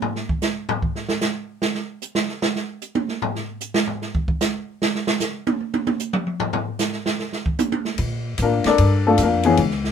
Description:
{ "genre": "jazz piano trio", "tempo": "151 BPM", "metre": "4/4", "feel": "swing 65% on 8ths", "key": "Bb major", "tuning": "A4 = 440 Hz", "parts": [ { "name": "open jazz drum kit", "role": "drums", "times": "0.0-9.9 s", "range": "hi-hat, kick drum, ride cymbal, snare drum, toms", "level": "-22 LUFS", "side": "right 2 dB", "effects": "none" }, { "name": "upright bass", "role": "bass", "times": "8.0-9.9 s", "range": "Db2 to Bb2", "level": "-21 LUFS", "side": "left 1 dB", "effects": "none" }, { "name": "warm upright piano", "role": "melody", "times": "8.4-9.6 s", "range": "E3 to D5", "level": "-16 LUFS", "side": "left 5 dB", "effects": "none" } ], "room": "light reverb", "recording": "minimal, uncompressed stereo recording", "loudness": "-20 LUFS", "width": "side -8 dB against mid", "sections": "0.0-8.0 A section; 8.0-9.9 A section", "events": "drum solo 0.0-8.0; upright piano solo 8.0-9.9", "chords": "0.0 N.C.; 8.0 Bbmaj7", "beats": "| 0.03 0.43 0.83 1.23 | 1.63 2.03 2.43 2.82 | 3.22 3.62 4.02 4.42 | 4.82 5.21 5.61 6.01 | 6.41 6.80 7.20 7.60 | 8.00 8.39 8.79 9.19 | 9.59" }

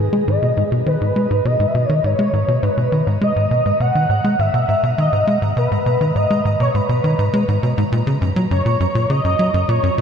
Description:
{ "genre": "ambient, sequencer-driven space music", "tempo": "102 BPM", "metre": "4/4", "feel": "straight", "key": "G# minor", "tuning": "A4 = 440 Hz", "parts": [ { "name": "expressive portamento lead", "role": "melody", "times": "0.0-10.0 s", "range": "G#4 to F#5", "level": "-19 LUFS", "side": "equal", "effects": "ensemble chorus, shimmer reverb, tape echo" }, { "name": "tight sequencer bass", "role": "riff", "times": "0.0-10.0 s", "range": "F#2 to G#3", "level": "-17 LUFS", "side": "equal", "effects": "tape echo" }, { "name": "pulsing gated texture", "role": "texture", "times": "0.0-10.0 s", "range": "A#5", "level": "-36 LUFS", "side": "right 2 dB", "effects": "chorus, built-in reverb, shimmer reverb" } ], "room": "wet huge ambient reverb, RT60 7.4 s", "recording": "none", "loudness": "-15 LUFS", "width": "side -7 dB against mid", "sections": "0.0-10.0 A section", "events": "fade-in on synth texture 0.0-10.0", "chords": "0.0 G#m; 7.9 F#", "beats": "0.28 | 0.86 1.45 2.04 2.63 | 3.22 3.81 4.39 4.98 | 5.57 6.16 6.75 7.33 | 7.92 8.51 9.10 9.69" }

